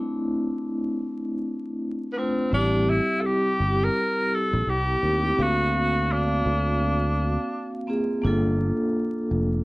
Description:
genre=hip hop, jazz-hop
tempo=84 BPM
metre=4/4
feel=swing 64% on 16ths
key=unclear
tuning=A4 = 436 Hz
part: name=vibraphone with soft mallets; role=accompaniment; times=0.0-9.6 s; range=G3 to E#5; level=-25 LUFS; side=equal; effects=none
part: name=clear tenor saxophone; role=melody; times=2.1-7.9 s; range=B3 to Bb4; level=-25 LUFS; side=equal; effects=none
part: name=sustaining fretless electric bass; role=bass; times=2.5-9.6 s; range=F1 to Eb2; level=-24 LUFS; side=equal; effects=none
room=moderate studio reverb, RT60 0.5 s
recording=worn, warbling old tape, cassette tape, vinyl crackle, warbly pitch drift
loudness=-22 LUFS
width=side -22 dB against mid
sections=0.0-2.5 A section; 2.5-9.6 B section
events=break 0.0-2.5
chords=0.0 F6; 2.5 Am7; 5.4 D7alt; 8.2 Gm7

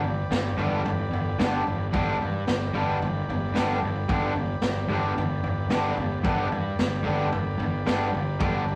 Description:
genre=garage rock duo or trio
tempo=111 BPM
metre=4/4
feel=straight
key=G major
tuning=A4 = 440 Hz
part: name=combo organ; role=sustained chords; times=0.0-8.8 s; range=B4 to G5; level=-37 LUFS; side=equal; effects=none
part: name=fuzz picked electric bass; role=bass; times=0.0-8.8 s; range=G1 to G2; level=-31 LUFS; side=equal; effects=overdrive, tube saturation
part: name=vintage drum kit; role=drums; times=0.0-8.8 s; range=kick drum, snare drum, toms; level=-31 LUFS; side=equal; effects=none
part: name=raw garage guitar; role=riff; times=0.6-8.6 s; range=G2 to D4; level=-30 LUFS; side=equal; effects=overdrive
room=moderate studio reverb, RT60 0.6 s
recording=rough rehearsal-room recording, warm saturation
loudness=-26 LUFS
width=mono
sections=0.0-8.8 A section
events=none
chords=0.0 G

